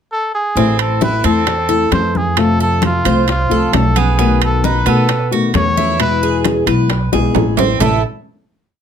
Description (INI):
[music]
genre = latin, Cuban son and guajira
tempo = 133 BPM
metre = 4/4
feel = straight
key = A harmonic minor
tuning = A4 = 440 Hz
[part]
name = trumpet with cup mute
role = melody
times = 0.1-8.0 s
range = F4 to C#5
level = -18 LUFS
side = equal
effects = none
[part]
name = nylon-string guitar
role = accompaniment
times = 0.6-8.0 s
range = A2 to F#4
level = -17 LUFS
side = left 5 dB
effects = none
[part]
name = Cuban tres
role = arpeggios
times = 0.6-8.0 s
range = A3 to C5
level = -20 LUFS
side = right 8 dB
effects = none
[part]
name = upright bass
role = bass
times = 0.6-8.0 s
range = A1 to B2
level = -18 LUFS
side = right 1 dB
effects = none
[part]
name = bongos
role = percussion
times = 0.6-7.9 s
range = none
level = -24 LUFS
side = left 7 dB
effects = none
[part]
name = congas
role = percussion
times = 0.6-7.9 s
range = none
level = -22 LUFS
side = left 2 dB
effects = none
[part]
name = timbales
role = percussion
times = 0.8-7.9 s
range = none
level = -20 LUFS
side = right 11 dB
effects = none
[sound]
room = moderate studio reverb, RT60 0.5 s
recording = close, detailed microphones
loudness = -12 LUFS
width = side -8 dB against mid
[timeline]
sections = 0.0-0.6 pickup bar; 0.6-7.8 verse; 7.8-8.8 final chord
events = drum fill 7.1-7.8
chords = 0.0 N.C.; 0.6 Am; 2.4 F; 4.2 B7; 6.0 E; 7.8 Am